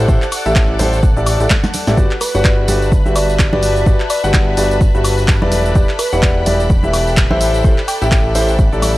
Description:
piano house; 127 BPM; 4/4; swing 58% on 16ths; G major; A4 = 441 Hz
analog string pad; sustained chords; 0.0-9.0 s; F#5 to F#6; -29 LUFS; left 1 dB; ensemble chorus, sidechain pumping
clear concert grand piano; riff; 0.0-9.0 s; E4 to F#5; -19 LUFS; equal; sidechain pumping
fat analog bass; bass; 0.0-9.0 s; E1 to A1; -17 LUFS; equal; sidechain pumping
clear studio string section; texture; 0.0-9.0 s; A4 to A5; -26 LUFS; left 2 dB; sidechain pumping
electronic kick drum; drums; 0.1-8.7 s; -13 LUFS; equal
punchy analog drum machine; drums; 0.1-8.9 s; handclaps, hi-hat, shaker, snare drum, woodblock; -21 LUFS; equal
tambourine and congas; percussion; 0.1-8.9 s; -26 LUFS; right 2 dB
thumb-piano-like synth pluck; melody; 2.2-8.8 s; B4 to G5; -22 LUFS; equal; chorus, tape echo
little or no reverb; dry, gritty hardware recording, cassette tape; -11 LUFS; side -17 dB against mid
0.0-9.0 A section
drum fill 1.5-2.0
0.0 Am7; 2.0 Gmaj7; 5.5 Em7; 7.4 Am7

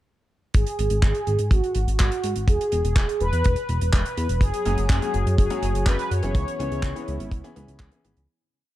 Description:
italo disco; 124 BPM; 4/4; straight; A4 = 439 Hz
mellow synth brass; melody; 0.5-7.8 s; F#4 to C#5; -27 LUFS; right 1 dB; chorus, digital delay
chorused synth bass; bass; 0.5-8.3 s; E1 to G#2; -24 LUFS; equal
damped 70s drum kit; drums; 0.5-8.3 s; handclaps, hi-hat; -32 LUFS; right 1 dB; small room ambience
kick drum; drums; 0.5-7.9 s; -20 LUFS; equal; small room ambience
warm analog pad; sustained chords; 4.4-8.3 s; F#3 to C#5; -33 LUFS; right 1 dB; wide subtle chorus
clear grand piano; stabs; 4.7-8.2 s; E3 to G#4; -32 LUFS; left 4 dB
small room ambience; dark, warm production; -20 LUFS; side -14 dB against mid
0.5-8.3 verse
fade-out 5.7-8.3
0.5 F#sus2/G#; 2.5 E; 4.4 F#sus2; 6.4 C#m7

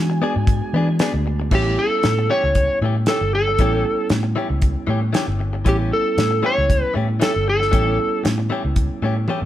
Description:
straight-eighth soul blues; 116 BPM; 4/4; swing 54% on 16ths; A mixolydian; A4 = 440 Hz
clean lap steel guitar; second line; 0.0-1.0 s; G#5; -32 LUFS; right 1 dB
bell-like tine electric piano; accompaniment; 0.0-9.5 s; G3 to F#4; -28 LUFS; right 4 dB
vintage muted fingered electric bass; bass; 0.0-9.5 s; G1 to E3; -21 LUFS; equal
direct-recorded clean electric guitar; stabs; 0.1-9.5 s; E3 to G#4; -26 LUFS; left 4 dB; spring reverb
damped 70s drum kit; drums; 0.5-9.4 s; crash cymbal, hi-hat, kick drum, snare drum, toms; -20 LUFS; equal
electric slide guitar; melody; 1.5-8.2 s; G4 to C#5; -19 LUFS; right 1 dB
light reverb; band playing live in one room; -17 LUFS; side -12 dB against mid
0.0-1.5 A section; 1.5-9.5 B section
electric slide guitar solo 0.0-1.5; drum fill 9.3
0.0 E7; 1.5 A7

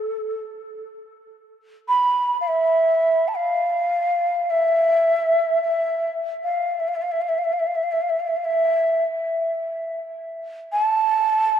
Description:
world meditative, free-time meditation music; free time; A4 = 441 Hz
breathy mellow bansuri; solo; 0.0-11.6 s; A4 to B5; -19 LUFS; right 1 dB; diffuse ambient delay
wet cathedral reverb, RT60 4.2 s; -19 LUFS; side -9 dB against mid
0.0-1.0 A section; 1.0-11.6 A section

